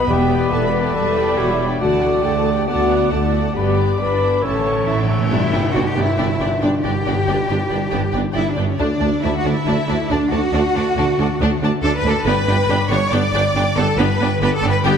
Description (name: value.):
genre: cinematic, heroic adventure film score.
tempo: 138 BPM.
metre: 4/4.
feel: straight.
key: unclear.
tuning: A4 = 440 Hz.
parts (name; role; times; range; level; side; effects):
dark symphonic violin section; melody; 0.0-15.0 s; C#5 to D6; -28 LUFS; left 2 dB; none.
bright clarinet; second line; 0.0-5.1 s; B4 to D5; -29 LUFS; right 1 dB; none.
dark cor anglais; second line; 0.0-5.3 s; C#5 to E5; -29 LUFS; right 3 dB; none.
silver concert flute; second line; 0.0-5.1 s; A5 to B5; -30 LUFS; left 2 dB; none.
warm studio violin section; second line; 0.0-14.9 s; B4 to D6; -28 LUFS; left 2 dB; none.
rich symphonic viola section; accompaniment; 0.0-14.9 s; G3 to D4; -25 LUFS; right 2 dB; none.
clear trombone section; sustained chords; 0.0-5.1 s; B2 to B3; -29 LUFS; right 3 dB; none.
mellow French horn section; sustained chords; 0.0-4.9 s; D4 to B4; -21 LUFS; left 5 dB; none.
concert harp; arpeggios; 0.0-15.0 s; G2 to D#6; -26 LUFS; left 8 dB; none.
mellow trumpet; stabs; 0.0-5.1 s; C#5 to D5; -26 LUFS; right 4 dB; none.
clear symphonic double bass section; bass; 0.0-14.9 s; E1 to D2; -23 LUFS; right 3 dB; none.
rich symphonic cello section; bass; 0.0-15.0 s; D2 to D5; -23 LUFS; right 1 dB; none.
timpani; percussion; 0.1-0.7, 4.4-5.3 s; E2 to A2; -25 LUFS; right 1 dB; none.
cymbal swell and tam-tam; percussion; 1.8-7.0 s; none; -28 LUFS; left 2 dB; none.
warm tuba; bass; 5.3-14.9 s; G1 to D2; -24 LUFS; right 3 dB; none.
room: wet scoring stage reverb, RT60 1.9 s.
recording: none.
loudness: -15 LUFS.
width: side -7 dB against mid.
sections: 0.0-5.3 A section; 5.3-15.0 B section.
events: timpani fill 4.4-5.3; band accent 5.3-5.8.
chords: 0.1 Em7; 1.8 D; 3.6 G; 4.4 A; 5.3 G; 8.8 D; 12.3 G.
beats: | 0.09 0.52 0.95 1.39 | 1.82 2.25 2.69 3.12 | 3.56 4.00 4.43 4.88 | 5.32 5.75 6.19 6.63 | 7.06 7.50 7.93 8.36 | 8.79 9.23 9.66 10.09 | 10.53 10.96 11.39 11.83 | 12.26 12.69 13.12 13.55 | 13.98 14.41 14.85.